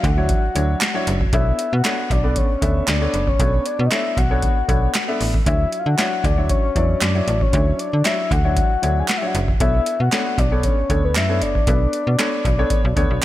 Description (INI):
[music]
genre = early-eighties boogie funk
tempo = 116 BPM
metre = 4/4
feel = straight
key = B minor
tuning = A4 = 441 Hz
[part]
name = soft octave-layered synth lead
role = melody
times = 0.0-13.2 s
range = B4 to G#5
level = -24 LUFS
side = left 3 dB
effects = chorus, slapback echo, tape echo
[part]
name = warm concert grand piano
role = accompaniment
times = 0.0-13.2 s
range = F#3 to E5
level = -25 LUFS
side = left 1 dB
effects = slapback echo
[part]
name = slap-like FM bass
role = bass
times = 0.0-13.2 s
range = F#1 to D3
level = -20 LUFS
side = equal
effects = none
[part]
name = booming analog drum machine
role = drums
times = 0.0-13.2 s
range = handclaps, hi-hat, kick drum, snare drum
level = -20 LUFS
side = equal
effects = overdrive
[part]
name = group handclap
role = percussion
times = 0.8-13.2 s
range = none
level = -30 LUFS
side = right 6 dB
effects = none
[sound]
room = light reverb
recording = none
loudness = -16 LUFS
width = side -14 dB against mid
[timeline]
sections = 0.0-13.2 A section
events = none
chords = 0.0 Dmaj9; 1.3 Bm9; 5.5 Dmaj9; 9.6 Bm9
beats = 0.29 0.81 | 1.33 1.84 2.36 2.88 | 3.40 3.91 4.43 4.95 | 5.47 5.98 6.50 7.02 | 7.54 8.05 8.57 9.09 | 9.60 10.12 10.64 11.16 | 11.67 12.19 12.71 13.22